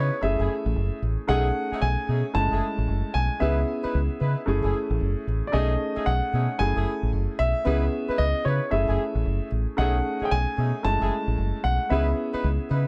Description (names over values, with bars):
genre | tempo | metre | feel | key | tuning
R&B | 113 BPM | 4/4 | swing 62% on 16ths | F# dorian | A4 = 440 Hz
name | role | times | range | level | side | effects
clear concert grand piano | melody | 0.0-12.9 s | C#5 to A5 | -31 LUFS | equal | none
clear baby grand piano | accompaniment | 0.0-12.9 s | G#3 to G#4 | -32 LUFS | equal | none
mellow horn section | stabs | 0.0-12.9 s | A3 to B4 | -34 LUFS | equal | none
deep dub fingered electric bass | bass | 0.0-12.8 s | F#1 to C#3 | -27 LUFS | equal | none
room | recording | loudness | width
light reverb | none | -25 LUFS | mono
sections
0.0-12.9 A section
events
none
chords
0.2 F#m9; 1.3 B13; 2.3 F#m9; 3.4 C#m9; 4.5 F#m9; 5.5 B13; 6.6 F#m9; 7.7 C#m9; 8.7 F#m9; 9.8 B13; 10.8 F#m9; 11.9 C#m9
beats
0.22 0.75 | 1.28 1.81 2.35 2.88 | 3.41 3.94 4.47 5.00 | 5.53 6.06 6.59 7.12 | 7.66 8.19 8.72 9.25 | 9.78 10.31 10.84 11.37 | 11.90 12.44